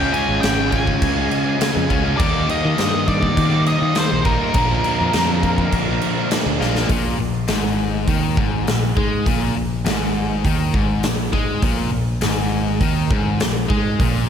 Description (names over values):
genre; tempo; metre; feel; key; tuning
classic rock; 102 BPM; 4/4; straight; unclear; A4 = 440 Hz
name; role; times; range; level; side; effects
octave-fuzz lead guitar; melody; 0.0-6.3 s; Bb4 to Ab5; -23 LUFS; left 1 dB; distortion, slapback echo
cranked stack guitar; riff; 0.0-14.3 s; Ab2 to Eb4; -23 LUFS; left 8 dB; overdrive
overdriven semi-hollow guitar; riff; 0.0-14.3 s; Ab2 to F4; -24 LUFS; right 8 dB; none
growling fingered electric bass; bass; 0.0-14.3 s; Ab1 to Eb3; -23 LUFS; equal; overdrive
huge arena drum kit; drums; 0.1-14.1 s; crash cymbal, hi-hat, kick drum, snare drum; -21 LUFS; equal; none
room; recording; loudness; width
moderate lush hall reverb, RT60 1.8 s, studio reverb; big arena sound; -16 LUFS; side -8 dB against mid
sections
0.0-6.9 A section; 6.9-14.3 B section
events
drum fill 6.6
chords
0.0 Db; 2.2 Eb; 4.6 Bb; 6.9 Absus2